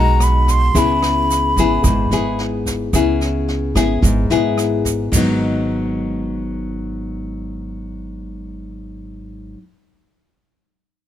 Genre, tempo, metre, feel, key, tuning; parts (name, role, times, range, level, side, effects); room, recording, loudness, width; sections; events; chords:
bossa nova; 110 BPM; 4/4; straight; G# minor; A4 = 441 Hz
hollow silver concert flute; melody; 0.0-2.4 s; A#5 to B#5; -18 LUFS; left 1 dB
nylon-string guitar; accompaniment; 0.0-9.6 s; G#2 to G#4; -20 LUFS; left 3 dB
upright bass; bass; 0.0-9.5 s; G#1 to C#2; -21 LUFS; right 1 dB
jazz brush drum kit; drums; 0.2-5.3 s; crash cymbal, kick drum, rim click, snare drum; -23 LUFS; right 1 dB
tube shaker; percussion; 0.2-5.3 s; -27 LUFS; right 9 dB
little or no reverb; close, detailed microphones; -15 LUFS; side -11 dB against mid
0.0-5.1 A section; 5.1-9.5 B section
flute solo 0.0-5.1
0.0 Emaj9 (rootless); 0.8 C#m7; 5.1 G#m7